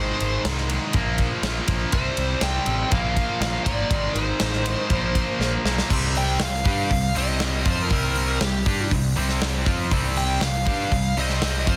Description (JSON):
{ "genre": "hard rock", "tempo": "120 BPM", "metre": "4/4", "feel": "straight", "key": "C minor", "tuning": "A4 = 440 Hz", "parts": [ { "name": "smooth overdriven lead guitar", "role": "melody", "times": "0.0-11.8 s", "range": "G4 to G5", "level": "-30 LUFS", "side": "equal", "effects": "slapback echo, plate reverb" }, { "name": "distorted electric guitar", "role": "riff", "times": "0.0-11.8 s", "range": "Ab2 to G4", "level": "-31 LUFS", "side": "equal", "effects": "overdrive" }, { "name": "tight distorted guitar", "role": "riff", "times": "0.0-11.8 s", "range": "Ab2 to G4", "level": "-31 LUFS", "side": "equal", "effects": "distortion" }, { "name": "fuzz picked electric bass", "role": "bass", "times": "0.0-11.8 s", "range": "Ab1 to G2", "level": "-29 LUFS", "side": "equal", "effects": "overdrive" }, { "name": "big rock drum kit", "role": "drums", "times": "0.2-11.8 s", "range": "crash cymbal, hi-hat, kick drum, ride cymbal, snare drum", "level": "-28 LUFS", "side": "equal", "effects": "none" } ], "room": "light reverb, small room ambience", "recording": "dense, heavily limited modern master", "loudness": "-23 LUFS", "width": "mono", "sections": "0.0-5.9 A section; 5.9-11.8 B section", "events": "drum fill 5.4-5.9; lead electric guitar solo 5.9-11.8", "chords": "0.0 Ab; 0.9 Bb5; 1.9 C5; 2.9 Bb5; 3.9 Ab; 4.9 Bb5; 5.9 C5", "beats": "0.45 0.94 1.44 | 1.93 2.42 2.92 3.41 | 3.91 4.41 4.91 5.40 | 5.90 6.40 6.90 7.41 | 7.91 8.41 8.91 9.41 | 9.92 10.42 10.92 11.43" }